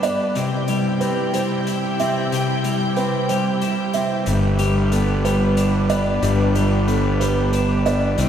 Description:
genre	post-rock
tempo	61 BPM (dotted quarters)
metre	6/8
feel	straight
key	G major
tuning	A4 = 440 Hz
part	rich studio string section	sustained chords	0.0-8.3 s	C3 to G5	-25 LUFS	left 1 dB	none
part	felt-muted upright piano	arpeggios	0.0-8.2 s	A4 to E5	-25 LUFS	right 4 dB	none
part	twelve-string electric guitar	arpeggios	0.0-8.3 s	G2 to E4	-22 LUFS	left 1 dB	spring reverb
part	hi-hat	drums	0.0-8.3 s	none	-34 LUFS	left 3 dB	none
part	fuzz fingered electric bass	bass	4.3-8.3 s	G1 to C2	-19 LUFS	equal	overdrive
room	wet cathedral reverb, RT60 5.0 s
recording	recorded in a church or concert hall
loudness	-17 LUFS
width	side -9 dB against mid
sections	0.0-8.3 A section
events	none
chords	0.4 C; 4.3 G

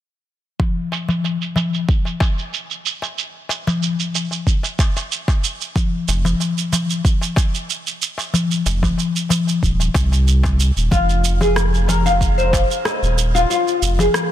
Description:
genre	organic downtempo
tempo	93 BPM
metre	4/4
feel	straight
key	F minor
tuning	A4 = 441 Hz
part	electronic kick drum	drums	0.6-12.7 s	none	-18 LUFS	equal	none
part	electronic shaker and rim click	drums	0.6-14.3 s	none	-24 LUFS	right 5 dB	low-pass filter on perc, soft clipping on snare, low-pass filter on snare, low-pass filter on room
part	darbuka	percussion	0.6-14.1 s	none	-22 LUFS	left 3 dB	none
part	warm sub bass	bass	6.1-14.1 s	Eb1 to C2	-17 LUFS	equal	sidechain pumping
part	oud	arpeggios	10.9-14.1 s	F4 to Eb5	-19 LUFS	left 2 dB	ping-pong delay, shimmer reverb
room	light reverb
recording	dense, heavily limited modern master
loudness	-16 LUFS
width	side -12 dB against mid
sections	0.6-10.9 A section; 10.9-14.3 B section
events	none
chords	0.6 F5; 10.9 F7(no3)

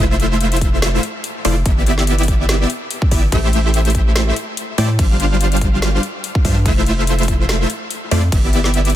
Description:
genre	future bass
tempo	144 BPM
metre	4/4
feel	swing 54% on 16ths, half-time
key	unclear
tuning	A4 = 440 Hz
part	dense compressed supersaw	riff	0.0-9.0 s	G3 to F5	-19 LUFS	equal	sidechain pumping, ping-pong delay
part	saturated sub bass	bass	0.0-9.0 s	F1 to A2	-17 LUFS	equal	sidechain pumping
part	trap drum kit	drums	0.2-9.0 s	crash cymbal, hi-hat, snare drum	-24 LUFS	left 2 dB	none
part	electronic kick drum	drums	0.6-8.4 s	none	-16 LUFS	equal	none
room	digital ambience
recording	dense, heavily limited modern master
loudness	-14 LUFS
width	side -12 dB against mid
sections	0.0-9.0 A section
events	none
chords	0.0 Fmaj7; 1.7 Em7/G; 3.3 Am7; 5.0 G7sus4; 6.7 Fmaj7; 8.3 Em7/G

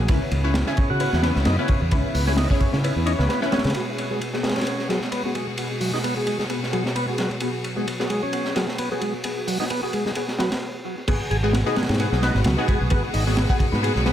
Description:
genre	breakbeat, breaks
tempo	131 BPM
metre	4/4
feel	swing 55% on 16ths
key	G# minor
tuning	A4 = 440 Hz
part	rich chamber string section	sustained chords	0.0-14.1 s	B2 to F#4	-31 LUFS	equal	sidechain pumping
part	orchestra-hit-like synth stab	stabs	0.0-14.1 s	B3 to C#5	-27 LUFS	left 1 dB	built-in reverb, phaser, cassette tape, analog delay
part	picked electric bass	bass	0.0-3.7, 11.1-14.1 s	G#1 to C#3	-22 LUFS	equal	none
part	crunchy breakbeat drum kit	drums	0.1-14.1 s	crash cymbal, hi-hat, kick drum, ride cymbal, snare drum	-25 LUFS	equal	high-pass filter on kick, high-pass filter on cymbals, high-pass filter on hats, high-pass filter on snare, high-pass filter on room, analog delay
part	tonewheel organ	riff	0.4-14.1 s	F#3 to G#4	-28 LUFS	equal	slow rotary speaker, tube saturation, low-pass filter, analog delay
room	light reverb, studio reverb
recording	echo-heavy mix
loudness	-20 LUFS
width	side -10 dB against mid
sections	0.0-3.8 A section; 3.8-11.1 B section; 11.1-14.1 C section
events	stop 10.6-11.1; drop 11.1-14.1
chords	0.1 C#m7; 3.8 G#m7

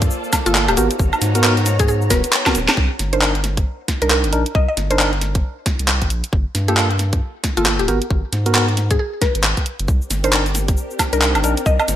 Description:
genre	UK garage, two-step garage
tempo	135 BPM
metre	4/4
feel	swing 61% on 16ths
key	unclear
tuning	A4 = 438 Hz
part	soft string machine	sustained chords	0.0-2.8, 9.9-12.0 s	Bb3 to Bb5	-28 LUFS	equal	ensemble chorus, sidechain pumping
part	saturated sub bass	bass	0.0-12.0 s	D1 to Ab2	-20 LUFS	equal	tube saturation, sidechain pumping
part	electronic kick drum	drums	0.0-11.8 s	none	-19 LUFS	equal	overdrive
part	garage drum kit	drums	0.0-12.0 s	cabasa, handclaps, hi-hat, snare drum, woodblock	-19 LUFS	equal	overdrive, gated reverb
part	warbly tape-like pad	texture	0.0-2.8 s	C5 to Bb5	-30 LUFS	left 2 dB	chorus, built-in reverb, sidechain pumping
part	mallet-like synth pluck	melody	0.5-11.9 s	F4 to Eb5	-23 LUFS	equal	chorus, ping-pong delay
part	tine electric piano	stabs	0.5-11.5 s	Bb3 to Bb4	-23 LUFS	equal	medium stereo tremolo, low-pass filter, ping-pong delay
room	light reverb, digital ambience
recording	bright 1980s-style digital production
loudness	-15 LUFS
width	side -11 dB against mid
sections	0.0-2.8 A section; 2.8-12.0 B section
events	drop 0.0-2.8; drum fill 2.4-2.8; filter sweep on tine electric piano 2.8-12.0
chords	0.0 Gm9; 0.8 Abm9; 2.8 Cm9; 6.3 Gm9; 7.9 Abm9; 9.9 Cm9

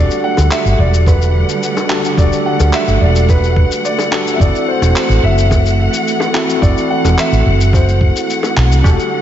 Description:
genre	sunset chillout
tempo	108 BPM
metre	4/4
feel	straight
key	unclear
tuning	A4 = 439 Hz
part	dark concert grand piano	melody	0.0-8.5 s	B4 to F#5	-20 LUFS	equal	digital delay, slapback echo
part	tine electric piano	accompaniment	0.0-9.2 s	C4 to A4	-19 LUFS	left 1 dB	medium stereo tremolo, auto-pan, tape echo, slapback echo
part	dark symphonic string section	sustained chords	0.0-9.2 s	D3 to F#5	-19 LUFS	right 1 dB	vintage 12-bit sampler grit
part	woody fretless electric bass	bass	0.0-8.9 s	E1 to D2	-12 LUFS	equal	analog chorus
part	electronic shaker and handclaps	drums	0.1-9.1 s	none	-23 LUFS	left 1 dB	slapback echo
part	bongos	percussion	0.4-8.5 s	none	-25 LUFS	left 3 dB	none
part	electronic kick drum	drums	1.1-9.0 s	none	-13 LUFS	equal	none
part	steel pan	arpeggios	8.8-9.1 s	D4	-23 LUFS	right 2 dB	tape echo, slapback echo
room	moderate lush hall reverb, RT60 2.4 s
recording	big arena sound, nothing above 7.7 kHz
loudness	-10 LUFS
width	side -10 dB against mid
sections	0.0-9.2 A section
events	none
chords	0.0 Em11; 4.4 F#m7b5

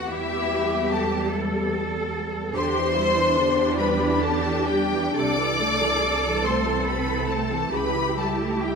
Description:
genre	classical, slow romantic movement for string orchestra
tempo	41-49 BPM (dotted quarters)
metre	6/8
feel	rubato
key	unclear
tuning	A4 = 441 Hz
part	warm symphonic violin section	melody	0.0-8.8 s	E5 to D6	-27 LUFS	left 5 dB	none
part	warm symphonic violin section	second line	0.0-8.8 s	E4 to D5	-27 LUFS	left 2 dB	none
part	warm symphonic viola section	accompaniment	0.0-8.8 s	C3 to E4	-27 LUFS	equal	none
part	dark symphonic double bass section	bass	0.0-8.8 s	C2 to E2	-30 LUFS	right 6 dB	none
part	warm symphonic cello section	bass	0.0-8.8 s	E4 to A4	-28 LUFS	right 3 dB	none
room	wet concert hall reverb, RT60 1.9 s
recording	none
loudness	-21 LUFS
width	side -5 dB against mid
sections	0.0-8.8 A section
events	none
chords	0.1 Em; 2.6 Em7; 5.2 Am/C; 7.7 A7/C#

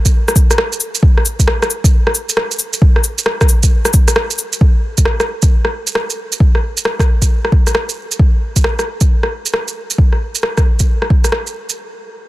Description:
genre	future garage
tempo	134 BPM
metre	4/4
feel	swing 64% on 16ths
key	none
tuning	none
part	electronic kick drum	drums	0.1-11.2 s	none	-11 LUFS	equal	overdrive
part	electronic shaker, rim click and cabasa	drums	0.1-11.8 s	none	-17 LUFS	equal	overdrive
room	little or no reverb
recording	dense, heavily limited modern master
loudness	-12 LUFS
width	side -17 dB against mid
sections	0.0-4.6 A section; 4.6-11.8 B section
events	none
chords	none

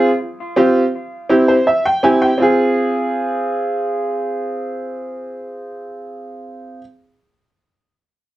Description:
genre	latin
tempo	164 BPM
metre	4/4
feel	straight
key	F harmonic minor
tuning	A4 = 435 Hz
part	clear upright piano	accompaniment	0.0-6.8 s	C4 to Ab5	-16 LUFS	right 1 dB	none
room	moderate studio reverb, RT60 0.6 s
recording	none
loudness	-14 LUFS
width	side -15 dB against mid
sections	0.0-2.4 A section; 2.4-5.3 B section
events	upright piano fill 1.3-2.4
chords	0.0 F5; 0.9 C; 2.4 Fm

